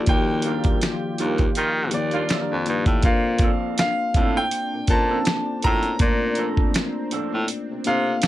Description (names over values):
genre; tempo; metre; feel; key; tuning
R&B, neo-soul; 81 BPM; 4/4; swing 56% on 16ths; Bb major; A4 = 441 Hz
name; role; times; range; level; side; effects
bright concert grand piano; melody; 0.0-8.3 s; D5 to Bb5; -26 LUFS; equal; none
mellow tine electric piano; accompaniment; 0.0-8.3 s; Eb3 to F5; -27 LUFS; left 4 dB; none
warm analog pad; sustained chords; 0.0-8.3 s; F3 to G4; -33 LUFS; right 2 dB; chorus
clear baritone saxophone; bass; 0.1-8.3 s; Eb2 to Eb3; -24 LUFS; equal; none
dusty soul sampler-style drum kit; drums; 0.1-8.3 s; finger snaps, hi-hat, kick drum, snare drum; -21 LUFS; equal; none
electric guitar through a small old amp; second line; 0.5-8.3 s; F3 to Bb4; -30 LUFS; right 6 dB; phaser
clear horn section; stabs; 1.6-2.4 s; D3 to F4; -29 LUFS; right 5 dB; none
room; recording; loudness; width
light reverb; none; -19 LUFS; side -14 dB against mid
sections
0.0-8.3 A section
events
band accent 0.1-3.0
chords
0.0 Ebmaj9; 3.0 Bbmaj9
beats
| 0.07 0.82 1.56 2.30 | 3.04 3.78 4.52 5.26 | 6.00 6.74 7.48 8.22